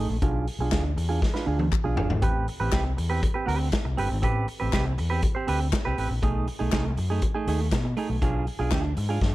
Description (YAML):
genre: disco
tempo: 120 BPM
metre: 4/4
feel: straight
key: A minor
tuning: A4 = 439 Hz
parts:
  - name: clean electric guitar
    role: accompaniment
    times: 0.0-9.3 s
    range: A3 to C5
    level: -29 LUFS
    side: right 4 dB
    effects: low-pass filter
  - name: overdriven fingered electric bass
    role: bass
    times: 0.0-9.3 s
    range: G1 to B2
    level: -27 LUFS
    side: left 1 dB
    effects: none
  - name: vintage drum kit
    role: drums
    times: 0.2-9.3 s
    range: hi-hat, kick drum, snare drum, toms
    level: -28 LUFS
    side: left 1 dB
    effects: gated reverb
  - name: group handclap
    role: percussion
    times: 0.7-8.8 s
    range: none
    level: -38 LUFS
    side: left 16 dB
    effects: none
room: little or no reverb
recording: none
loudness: -23 LUFS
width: side -17 dB against mid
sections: 0.0-9.3 A section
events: filter sweep on clean electric guitar 0.0-9.3; drum fill 1.2-2.2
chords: 0.2 E7b9/B (rootless); 2.2 Am9; 6.2 B6; 8.2 Bdim7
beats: | 0.22 0.72 1.23 1.73 | 2.23 2.73 3.23 3.73 | 4.23 4.73 5.23 5.72 | 6.22 6.72 7.22 7.72 | 8.22 8.72 9.22